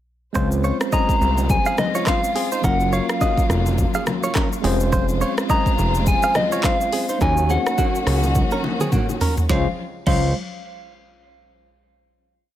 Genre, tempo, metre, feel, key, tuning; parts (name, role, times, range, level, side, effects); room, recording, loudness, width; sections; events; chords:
afrobeats; 105 BPM; 4/4; swing 58% on 16ths; Db major; A4 = 437 Hz
tine electric piano; accompaniment; 0.3-10.3 s; Gb3 to Db5; -26 LUFS; left 1 dB; medium stereo tremolo
congas and bongos; percussion; 0.3-10.3 s; -30 LUFS; left 5 dB
dark studio string section; sustained chords; 0.4-9.8 s; Db3 to C5; -30 LUFS; left 1 dB
direct-recorded clean electric guitar; riff; 0.4-10.3 s; Bb3 to F5; -27 LUFS; right 4 dB; ping-pong delay
fat analog bass; bass; 0.4-10.3 s; F1 to Eb2; -20 LUFS; equal
afro-pop drum kit; drums; 0.4-10.2 s; crash cymbal, handclaps, hi-hat, kick drum, rim click, shaker, snare drum, toms; -22 LUFS; equal
soft struck synth lead; melody; 0.9-10.3 s; Eb5 to Bb5; -23 LUFS; left 1 dB; chorus, ping-pong delay
little or no reverb; faint mains hum; -17 LUFS; side -12 dB against mid
0.4-9.5 chorus; 9.5-11.8 final chord
drum fill 8.4-9.5
0.4 Dbmaj7; 2.6 Gbmaj7; 4.6 Dbmaj7/F; 7.2 Ebm7; 9.5 Dbmaj7